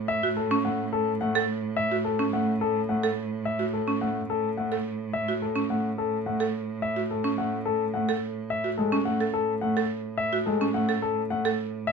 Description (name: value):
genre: classical, minimalist pattern music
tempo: 107 BPM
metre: 3/4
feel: straight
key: A major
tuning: A4 = 440 Hz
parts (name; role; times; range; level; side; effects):
- rich cello; bass; 0.0-11.9 s; A2; -32 LUFS; right 5 dB; none
- warm concert grand piano; melody; 0.1-11.9 s; A4 to F#5; -28 LUFS; left 6 dB; none
- buzzing marimba with medium hard mallets; arpeggios; 0.2-11.6 s; C#4 to A4; -30 LUFS; right 6 dB; none
- warm grand piano; accompaniment; 0.7-11.5 s; G#3 to A3; -29 LUFS; left 2 dB; none
room: light reverb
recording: close, detailed microphones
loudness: -24 LUFS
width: side -5 dB against mid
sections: 0.0-11.9 A section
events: none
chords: none